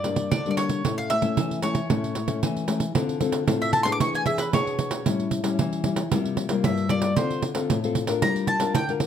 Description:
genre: samba and choro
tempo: 114 BPM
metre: 4/4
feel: straight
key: D minor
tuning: A4 = 440 Hz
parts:
  - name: bowl-back mandolin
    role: melody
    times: 0.0-8.9 s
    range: B4 to D6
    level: -27 LUFS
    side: equal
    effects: none
  - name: nylon-string guitar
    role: accompaniment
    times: 0.0-9.1 s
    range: G2 to Bb4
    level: -26 LUFS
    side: left 5 dB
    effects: none
  - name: pandeiro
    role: percussion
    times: 0.0-9.1 s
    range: none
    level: -26 LUFS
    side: right 5 dB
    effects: none
room: light reverb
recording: close, detailed microphones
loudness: -22 LUFS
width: side -9 dB against mid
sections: 0.0-3.0 A section; 3.0-9.1 B section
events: mandolin solo 3.0-9.1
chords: 0.0 Gm; 0.8 A; 3.0 Dm7; 4.0 E7; 5.1 A7; 6.1 C7sus4; 7.2 Dm7; 8.2 Gm7

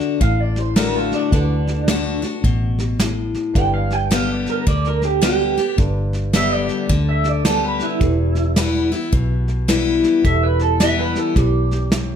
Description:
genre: honky-tonk and classic country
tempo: 108 BPM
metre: 4/4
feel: swing 62% on 8ths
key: G major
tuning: A4 = 439 Hz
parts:
  - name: dark grand piano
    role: accompaniment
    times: 0.0-12.2 s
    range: D4 to D5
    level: -32 LUFS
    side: right 5 dB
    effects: none
  - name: picked steel-string acoustic guitar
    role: accompaniment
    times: 0.0-12.2 s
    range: E2 to G4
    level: -22 LUFS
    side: left 5 dB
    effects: none
  - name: soft brush drum kit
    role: drums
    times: 0.0-12.1 s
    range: hi-hat, kick drum, snare drum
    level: -21 LUFS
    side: right 1 dB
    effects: none
  - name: electric guitar through a small old amp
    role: second line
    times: 0.2-12.2 s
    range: D4 to G5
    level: -22 LUFS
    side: right 4 dB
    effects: phaser, tape echo
  - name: vintage muted fingered electric bass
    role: bass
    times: 0.2-12.2 s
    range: E1 to D2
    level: -20 LUFS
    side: equal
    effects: none
room: moderate large studio reverb, RT60 0.9 s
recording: none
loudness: -16 LUFS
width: side -8 dB against mid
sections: 0.0-12.2 A section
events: clean electric guitar solo 0.0-12.2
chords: 0.0 D; 3.6 G; 8.0 Em

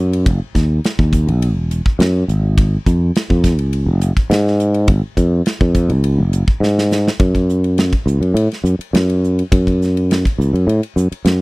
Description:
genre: electric jazz fusion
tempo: 104 BPM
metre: 4/4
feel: straight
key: unclear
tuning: A4 = 436 Hz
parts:
  - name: sustaining fretless electric bass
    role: bass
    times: 0.0-11.4 s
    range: E1 to A2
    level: -14 LUFS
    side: equal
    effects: none
  - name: modern studio drum kit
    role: drums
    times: 0.1-11.4 s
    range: hi-hat, kick drum, ride cymbal, snare drum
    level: -17 LUFS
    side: equal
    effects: none
room: little or no reverb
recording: dry, close 1970s-style studio recording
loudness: -13 LUFS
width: side -26 dB against mid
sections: 0.0-7.2 A section; 7.2-11.4 B section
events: drum fill 6.6-7.2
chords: none

